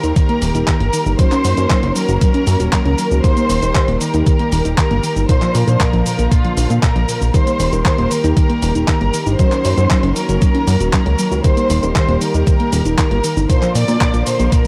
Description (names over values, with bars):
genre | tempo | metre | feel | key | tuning
italo disco | 117 BPM | 4/4 | straight | Eb major | A4 = 444 Hz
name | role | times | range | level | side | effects
dark symphonic violin section | melody | 0.0-14.7 s | F4 to D6 | -24 LUFS | equal | tape echo
rich chamber string section | sustained chords | 0.0-14.7 s | D3 to Bb4 | -27 LUFS | equal | none
soft round pluck | arpeggios | 0.0-14.7 s | Bb2 to Gb4 | -23 LUFS | equal | chorus, cassette tape, tape echo
dark concert grand piano | stabs | 0.0-14.7 s | F3 to Bb4 | -28 LUFS | equal | none
chorused synth bass | bass | 0.0-14.5 s | Eb1 to Bb2 | -19 LUFS | equal | tube saturation
clean 12-bit digital drum machine | drums | 0.0-14.7 s | cabasa, handclaps, hi-hat | -26 LUFS | equal | none
electronic kick drum | drums | 0.2-14.6 s | none | -18 LUFS | equal | overdrive
room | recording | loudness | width
little or no reverb | dry, gritty hardware recording, vinyl crackle | -15 LUFS | mono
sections
0.0-14.7 A section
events
none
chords
0.0 Eb; 1.2 Gb6; 3.2 Eb; 5.3 Bb; 7.3 Eb; 9.4 Gb6; 11.4 Eb; 13.5 Bb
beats
0.16 0.68 | 1.19 1.70 2.21 2.73 | 3.24 3.75 4.26 4.78 | 5.29 5.80 6.32 6.83 | 7.34 7.86 8.37 8.88 | 9.39 9.91 10.42 10.93 | 11.45 11.96 12.47 12.98 | 13.50 14.01 14.52